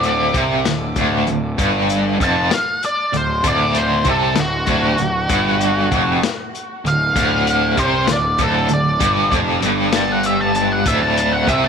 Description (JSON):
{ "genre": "psychedelic rock", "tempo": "65 BPM (dotted quarters)", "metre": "6/8", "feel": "straight", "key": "unclear", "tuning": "A4 = 441 Hz", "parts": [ { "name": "octave-fuzz lead guitar", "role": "melody", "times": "0.0-11.7 s", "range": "F#4 to A5", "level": "-20 LUFS", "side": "equal", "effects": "wah, distortion, tape echo" }, { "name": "overdriven electric guitar", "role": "riff", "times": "0.0-11.7 s", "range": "D2 to C3", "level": "-18 LUFS", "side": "equal", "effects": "tremolo" }, { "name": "fuzz picked electric bass", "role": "bass", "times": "0.0-11.7 s", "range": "D1 to C2", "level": "-23 LUFS", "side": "equal", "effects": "overdrive" }, { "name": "crunchy breakbeat drum kit", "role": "drums", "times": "0.0-11.6 s", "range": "hi-hat, kick drum, snare drum", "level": "-23 LUFS", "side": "left 3 dB", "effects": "none" } ], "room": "small room ambience", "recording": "1960s-style stereo", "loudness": "-15 LUFS", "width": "side -6 dB against mid", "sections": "0.0-11.7 A section", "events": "lead electric guitar solo 0.0-11.7", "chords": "none" }